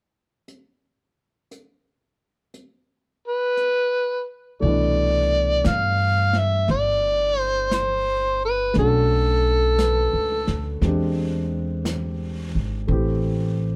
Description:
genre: jazz ballad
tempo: 58 BPM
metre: 4/4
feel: swing 68% on 8ths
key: C major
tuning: A4 = 440 Hz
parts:
  - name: jazz brush drum kit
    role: drums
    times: 0.5-13.8 s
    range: brushed snare drum, hi-hat, snare drum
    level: -36 LUFS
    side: equal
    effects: none
  - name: overdriven harmonica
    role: melody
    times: 3.3-10.8 s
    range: A4 to F5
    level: -23 LUFS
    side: equal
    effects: none
  - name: warm concert grand piano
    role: accompaniment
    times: 4.6-13.8 s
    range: B2 to B4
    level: -30 LUFS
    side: equal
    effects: none
  - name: upright bass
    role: bass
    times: 4.6-13.8 s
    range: G1 to G2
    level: -26 LUFS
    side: equal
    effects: none
room: little or no reverb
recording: close, detailed microphones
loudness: -22 LUFS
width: mono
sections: 0.5-4.6 A section; 4.6-13.8 B section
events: none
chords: 0.5 N.C.; 4.6 Cmaj13; 8.7 Bm9; 10.8 E7alt; 12.9 Am7

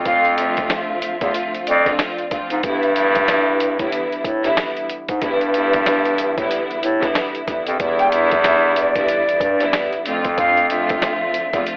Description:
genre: hip hop, boom-bap hip-hop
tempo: 93 BPM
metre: 4/4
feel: swing 60% on 16ths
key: G mixolydian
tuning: A4 = 440 Hz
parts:
  - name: warm symphonic string section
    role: accompaniment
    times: 0.0-11.8 s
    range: D3 to F4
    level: -25 LUFS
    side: equal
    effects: cassette tape, high-pass filter, low-pass filter
  - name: warm bass clarinet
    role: bass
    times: 0.0-11.6 s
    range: E2 to A2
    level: -21 LUFS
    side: equal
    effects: none
  - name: breathy mellow jazz flute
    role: melody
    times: 0.1-2.0, 8.0-11.8 s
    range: D5 to G5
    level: -23 LUFS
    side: equal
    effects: high-pass filter, low-pass filter, analog delay
  - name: boom bap sampler-style drum kit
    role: drums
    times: 0.1-11.8 s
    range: hi-hat, kick drum, snare drum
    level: -26 LUFS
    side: equal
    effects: none
room: little or no reverb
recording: dry, gritty hardware recording, transformer saturation, vinyl crackle, telephone sound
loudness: -19 LUFS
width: mono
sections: 0.0-11.8 A section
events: none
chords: 0.0 F6; 2.6 G6; 7.8 Em7; 10.1 F6

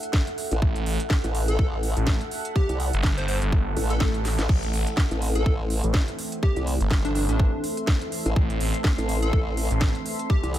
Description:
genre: bass house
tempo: 124 BPM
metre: 4/4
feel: swing 56% on 16ths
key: A dorian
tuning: A4 = 440 Hz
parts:
  - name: garage drum kit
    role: drums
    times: 0.0-10.6 s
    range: crash cymbal, hi-hat, snare drum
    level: -31 LUFS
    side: right 1 dB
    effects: none
  - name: deep dark ambient pad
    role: texture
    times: 0.0-10.6 s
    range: A4 to C6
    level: -33 LUFS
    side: right 1 dB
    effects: chorus, built-in reverb, sidechain pumping
  - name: electronic kick drum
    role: drums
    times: 0.1-10.4 s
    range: none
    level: -23 LUFS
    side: equal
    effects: none
  - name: formant-sweep wobble bass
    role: bass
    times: 0.5-10.6 s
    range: A1 to C2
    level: -25 LUFS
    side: equal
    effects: chorus, tube saturation, sidechain pumping
  - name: phased detuned saw bass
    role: bass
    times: 0.6-9.9 s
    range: G1 to A1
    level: -26 LUFS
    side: equal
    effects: phaser, sidechain pumping
  - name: plucky unison lead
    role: melody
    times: 1.5-10.5 s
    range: D4 to C5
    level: -32 LUFS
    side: equal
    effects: digital delay
  - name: swell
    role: sound effects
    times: 3.7-4.5 s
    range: none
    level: -37 LUFS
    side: left 3 dB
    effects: none
  - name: sweeping resonant pad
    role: sustained chords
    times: 4.5-10.6 s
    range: E3 to C4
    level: -34 LUFS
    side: right 2 dB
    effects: chorus, vintage 12-bit sampler grit, sidechain pumping
room: little or no reverb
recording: none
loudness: -22 LUFS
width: side -12 dB against mid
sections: 0.0-10.6 A section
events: swell 3.7-4.5; drum fill 4.2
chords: 0.0 Am

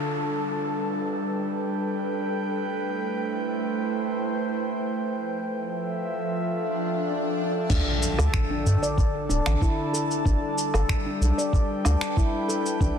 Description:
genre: organic downtempo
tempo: 94 BPM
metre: 4/4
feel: straight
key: D dorian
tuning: A4 = 440 Hz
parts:
  - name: airy breathy pad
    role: sustained chords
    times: 0.0-13.0 s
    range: D3 to A5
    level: -27 LUFS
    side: right 1 dB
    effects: chorus, sidechain pumping
  - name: downlifter, swell and impact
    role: sound effects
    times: 0.0-2.6, 6.6-10.3 s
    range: none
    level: -33 LUFS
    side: left 1 dB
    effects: none
  - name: handpan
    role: arpeggios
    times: 7.7-13.0 s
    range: D4 to D5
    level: -28 LUFS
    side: left 1 dB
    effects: ping-pong delay
  - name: round analog bass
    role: bass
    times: 7.7-12.9 s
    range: D1 to G2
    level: -22 LUFS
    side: equal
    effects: none
  - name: dusty soul sampler-style drum kit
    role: drums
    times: 7.7-12.9 s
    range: cabasa, crash cymbal, finger snaps, woodblock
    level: -31 LUFS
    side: equal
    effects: low-pass filter on perc, soft clipping on snare, low-pass filter on snare, low-pass filter on cymbals, low-pass filter on room
  - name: electronic kick drum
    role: drums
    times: 7.7-12.9 s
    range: none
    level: -24 LUFS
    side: equal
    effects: none
room: moderate lush hall reverb, RT60 2.5 s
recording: dense, heavily limited modern master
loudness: -23 LUFS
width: side -8 dB against mid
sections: 0.0-7.7 A section; 7.7-13.0 B section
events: swell 6.6-7.7; impact 7.7-10.3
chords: 0.0 Gadd9; 2.6 Am7; 5.1 Fmaj7; 7.7 Dm; 10.3 Gadd9

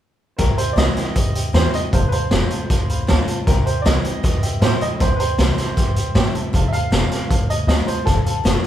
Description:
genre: rockabilly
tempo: 156 BPM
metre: 4/4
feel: straight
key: C major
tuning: A4 = 440 Hz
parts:
  - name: bright upright piano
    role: melody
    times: 0.4-8.7 s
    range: A4 to F5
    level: -25 LUFS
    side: right 2 dB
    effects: none
  - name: honky-tonk upright piano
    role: accompaniment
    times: 0.4-8.7 s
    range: C5 to B5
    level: -32 LUFS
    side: right 2 dB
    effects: none
  - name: picked steel-string acoustic guitar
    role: accompaniment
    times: 0.4-8.7 s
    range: F2 to F4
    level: -29 LUFS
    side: left 3 dB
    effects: none
  - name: upright bass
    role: bass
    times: 0.4-8.7 s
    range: F1 to A2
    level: -21 LUFS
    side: equal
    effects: none
  - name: raw garage drum kit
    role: drums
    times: 0.4-8.7 s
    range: hi-hat, kick drum, snare drum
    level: -18 LUFS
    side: equal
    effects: none
room: light reverb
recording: band playing live in one room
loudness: -16 LUFS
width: side -11 dB against mid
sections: 0.4-8.7 A section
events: none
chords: 0.4 C6; 1.9 F6; 3.5 C6; 6.5 F6

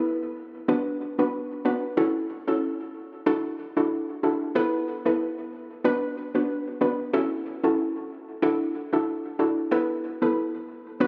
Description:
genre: dancehall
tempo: 93 BPM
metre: 4/4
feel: swing 56% on 16ths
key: unclear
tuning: A4 = 438 Hz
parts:
  - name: soft round pluck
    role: solo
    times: 0.0-11.1 s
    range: B3 to B4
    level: -27 LUFS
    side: equal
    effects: chorus, tape echo
room: moderate lush hall reverb, RT60 2.5 s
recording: recorded on a phone in the room, studio ambience, compression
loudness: -26 LUFS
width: mono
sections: 0.0-9.7 A section; 9.7-11.1 B section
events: none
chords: 0.0 Asus2; 0.7 Bm; 2.0 F#m7; 3.3 Dadd9; 4.6 Asus2; 5.8 Bm; 7.1 F#m7; 8.4 Dadd9; 9.7 Asus2

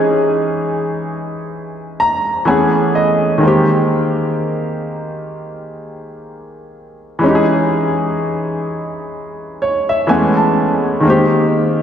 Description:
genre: R&B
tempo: 63 BPM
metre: 4/4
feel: swing 58% on 16ths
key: Ab major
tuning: A4 = 439 Hz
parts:
  - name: clear baby grand piano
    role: solo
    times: 0.0-11.8 s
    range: Eb3 to Bb5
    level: -14 LUFS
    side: equal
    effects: lush chorus
room: wet lush hall reverb, RT60 2.6 s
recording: dreamy mix soaked in reverb, faint mains hum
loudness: -13 LUFS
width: side -9 dB against mid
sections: 0.0-11.8 A section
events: grand piano fill 1.5-3.4, 9.1-11.0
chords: 0.0 Dbmadd9; 2.5 Amaj9; 3.4 Abmaj9; 7.2 Dbmadd9; 10.1 Amaj9; 11.0 Abmaj9

